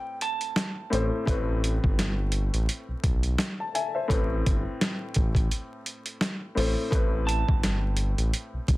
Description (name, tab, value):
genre	hip hop, boom-bap hip-hop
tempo	85 BPM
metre	4/4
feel	swing 57% on 16ths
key	A minor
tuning	A4 = 443 Hz
part	clean electric guitar	melody	0.0-1.2, 7.3-8.5 s	G5 to A5	-33 LUFS	right 6 dB	high-pass filter, low-pass filter, tape echo
part	warm grand piano	accompaniment	0.0-8.8 s	A2 to A5	-32 LUFS	left 2 dB	high-pass filter, low-pass filter, plate reverb
part	boom bap sampler-style drum kit	drums	0.2-8.8 s	hi-hat, kick drum, snare drum	-26 LUFS	equal	none
part	smooth synth bass	bass	0.9-8.8 s	G1 to B1	-27 LUFS	equal	none
room	little or no reverb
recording	dense, heavily limited modern master, vinyl crackle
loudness	-24 LUFS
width	side -18 dB against mid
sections	0.0-8.8 A section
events	none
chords	0.0 Amadd9